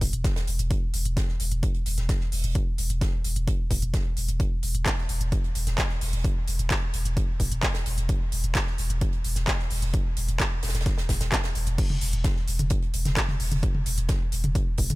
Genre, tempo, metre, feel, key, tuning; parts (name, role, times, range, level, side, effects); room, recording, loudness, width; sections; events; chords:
driving peak-time techno; 130 BPM; 4/4; straight; A4 = 440 Hz
saturated sub bass; bass; 0.0-15.0 s; E1; -27 LUFS; equal; overdrive, sidechain pumping, low-pass filter
electronic kick drum; drums; 0.0-14.9 s; -26 LUFS; equal
techno drum kit; drums; 0.0-15.0 s; crash cymbal, handclaps, hi-hat, toms; -30 LUFS; equal; overdrive
tight funk drum kit; drums; 0.0-14.9 s; hi-hat, snare drum; -39 LUFS; right 2 dB; high-pass filter on hats, high-pass filter on snare, high-pass filter on room
small room ambience; -24 LUFS; side -20 dB against mid
0.0-11.8 A section; 11.8-15.0 B section
drop 11.8-15.0